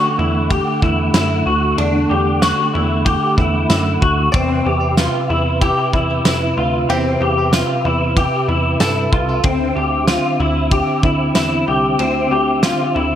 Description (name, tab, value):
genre	dream pop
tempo	94 BPM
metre	4/4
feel	straight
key	unclear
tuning	A4 = 440 Hz
part	mellow tonewheel organ	sustained chords	0.0-13.2 s	C3 to F#5	-20 LUFS	right 2 dB	chorus vibrato, fast rotary speaker
part	electric guitar through a small old amp	arpeggios	0.0-13.2 s	C4 to G4	-17 LUFS	left 2 dB	ensemble chorus, digital delay
part	bluegrass banjo	texture	0.0-0.1, 4.3-9.7 s	E4 to D5	-28 LUFS	right 2 dB	digital delay
part	plucky analog bass	bass	0.2-13.2 s	C2 to G2	-21 LUFS	equal	none
part	loose indie drum kit	drums	0.5-12.8 s	kick drum, ride cymbal, snare drum, tambourine	-18 LUFS	equal	gated reverb
room	moderate plate reverb, RT60 2.6 s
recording	bright 1980s-style digital production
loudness	-14 LUFS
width	side -10 dB against mid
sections	0.0-13.2 A section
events	none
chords	0.0 Em11; 4.3 Cmaj7; 9.4 D9sus4